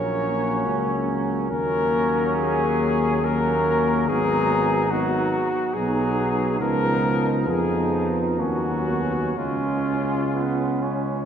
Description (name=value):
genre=classical, hymn-like piece for brass band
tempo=60-72 BPM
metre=3/4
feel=rubato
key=unclear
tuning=A4 = 440 Hz
part: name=mellow cornet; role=melody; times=0.0-11.3 s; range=E#4 to Db5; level=-26 LUFS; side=left 2 dB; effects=none
part: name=warm flugelhorn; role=second line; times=0.0-11.3 s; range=B3 to D#4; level=-28 LUFS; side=right 4 dB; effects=none
part: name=brilliant trombone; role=accompaniment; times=0.0-11.3 s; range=E#3 to G#3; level=-30 LUFS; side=right 1 dB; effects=none
part: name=warm euphonium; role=accompaniment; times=0.0-11.3 s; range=A#3 to C#4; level=-27 LUFS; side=left 2 dB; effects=none
part: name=mellow tuba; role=bass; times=0.0-11.3 s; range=G#1 to E#2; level=-26 LUFS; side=right 1 dB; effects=none
room=wet cathedral reverb, RT60 4.4 s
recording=heard from further back in the room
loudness=-20 LUFS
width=side -8 dB against mid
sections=0.0-11.3 A section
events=none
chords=0.0 Gb/Bb; 1.5 D#m7; 4.1 G#m7; 6.6 C#13; 8.4 D#m7; 9.4 C#